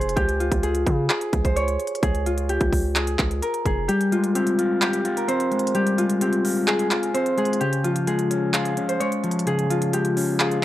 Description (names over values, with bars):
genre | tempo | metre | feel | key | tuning
hip hop, trap | 129 BPM | 4/4 | half-time | unclear | A4 = 442 Hz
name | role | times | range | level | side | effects
Celtic harp | melody | 0.0-10.6 s | F4 to Db5 | -24 LUFS | left 1 dB | low-pass filter
distorted 808-style bass | bass | 0.0-3.9 s | F1 to Db3 | -25 LUFS | right 1 dB | distortion
trap drum kit | drums | 0.0-10.6 s | handclaps, hi-hat, kick drum | -25 LUFS | right 1 dB | overdrive
mellow electric guitar | accompaniment | 3.9-10.6 s | Db3 to Ab4 | -23 LUFS | left 1 dB | low-pass filter
room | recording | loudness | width
little or no reverb | dry, gritty hardware recording | -20 LUFS | side -14 dB against mid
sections
0.0-10.6 A section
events
kick muted 3.9-10.6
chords
0.2 Db; 3.9 Fmadd9; 7.6 Db